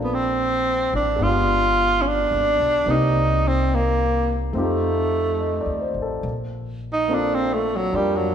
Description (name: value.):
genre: jazz ballad.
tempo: 71 BPM.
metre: 4/4.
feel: swing 68% on 8ths.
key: Bb major.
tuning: A4 = 440 Hz.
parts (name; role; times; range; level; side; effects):
breathy tenor saxophone; melody; 0.0-8.3 s; Gb3 to F4; -20 LUFS; right 2 dB; none.
warm concert grand piano; accompaniment; 0.0-8.3 s; Ab3 to Eb5; -26 LUFS; left 2 dB; none.
upright bass; bass; 0.0-8.3 s; G1 to F2; -26 LUFS; left 1 dB; none.
room: moderate recital hall reverb, RT60 1.6 s.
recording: recorded in a church or concert hall.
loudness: -19 LUFS.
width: side -8 dB against mid.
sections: 0.0-6.2 A section; 6.2-8.3 B section.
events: tenor saxophone solo 6.2-8.3.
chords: 0.0 Bbmaj9; 1.2 G7b9; 2.9 Cm7; 4.5 F7; 6.2 Bbmaj9.